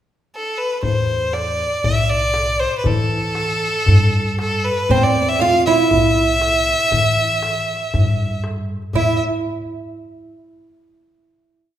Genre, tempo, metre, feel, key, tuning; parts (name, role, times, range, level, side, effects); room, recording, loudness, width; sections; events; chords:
Arabic maqam ensemble; 118 BPM; 4/4; straight; E maqam kurd; A4 = 439 Hz
clear violin; melody; 0.4-9.2 s; A4 to F5; -18 LUFS; equal
upright bass; bass; 0.8-9.2 s; B1 to E3; -22 LUFS; equal
darbuka; percussion; 0.8-9.2 s; -23 LUFS; left 3 dB
oud; second line; 4.9-9.2 s; C4 to F4; -19 LUFS; right 4 dB
wet recital hall reverb, RT60 1.7 s; minimal, uncompressed stereo recording; -15 LUFS; side -11 dB against mid
0.0-0.8 pickup bar; 0.8-9.0 A section; 9.0-11.0 final note